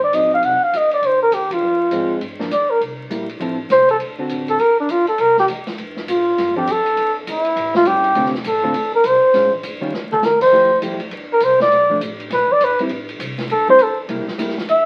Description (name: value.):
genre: jazz, small-group swing and bop.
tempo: 202 BPM.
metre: 4/4.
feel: swing 63% on 8ths.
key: F major.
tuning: A4 = 439 Hz.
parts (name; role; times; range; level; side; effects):
trumpet with bucket mute; melody; 0.0-14.9 s; D4 to Gb5; -16 LUFS; equal; none.
upright bass; bass; 0.0-14.9 s; E1 to A2; -40 LUFS; equal; none.
open jazz drum kit; drums; 0.0-14.8 s; crash cymbal, hi-hat, kick drum, ride cymbal, snare drum, toms; -32 LUFS; equal; none.
hollow-body jazz guitar; accompaniment; 0.1-14.6 s; D3 to A4; -27 LUFS; equal; none.
room: moderate club reverb, RT60 0.7 s.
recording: very old 78 rpm record, vinyl crackle.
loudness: -17 LUFS.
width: mono.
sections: 0.0-5.8 A section; 5.8-14.9 B section.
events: band accent 1.5; stop 5.5; drum fill 9.9.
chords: 0.0 Ab7 (rootless); 1.0 Dbmaj7; 2.2 Gm7; 2.8 C7; 3.4 Fmaj7; 4.0 D7; 4.6 G5; 5.2 Gmadd11/C (rootless); 5.8 F; 7.0 Dsus2; 7.6 A7; 8.2 Dm7; 9.3 Bbm7; 9.9 C7#9/D# (rootless); 10.5 Fmaj9; 11.7 Bm7b5; 12.3 E; 12.9 Am; 14.1 C7 (rootless).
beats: 0.13 0.42 0.72 | 1.02 1.32 1.61 1.91 | 2.21 2.51 2.80 3.10 | 3.40 3.70 3.99 4.29 | 4.59 4.89 5.18 5.48 | 5.78 6.08 6.37 6.67 | 6.97 7.26 7.56 7.86 | 8.15 8.45 8.75 9.04 | 9.34 9.64 9.94 10.23 | 10.53 10.82 11.12 11.42 | 11.71 12.01 12.31 12.61 | 12.90 13.20 13.49 13.79 | 14.09 14.38 14.68.